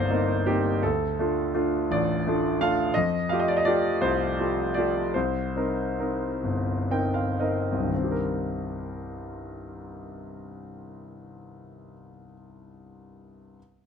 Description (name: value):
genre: classical, lyrical solo piano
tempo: 36-59 BPM (dotted quarters)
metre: 6/8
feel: rubato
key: C dorian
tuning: A4 = 440 Hz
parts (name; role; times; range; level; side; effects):
- clear concert grand piano; solo; 0.0-13.6 s; G1 to G5; -25 LUFS; equal; none
room: light reverb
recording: close, detailed microphones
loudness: -23 LUFS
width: side -7 dB against mid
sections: 0.0-7.9 A section; 7.9-11.1 B section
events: slowing down 3.0-7.9; grand piano fill 6.4-7.9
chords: 0.0 Cm7; 0.8 Dm; 3.0 Fadd9; 5.1 Cm7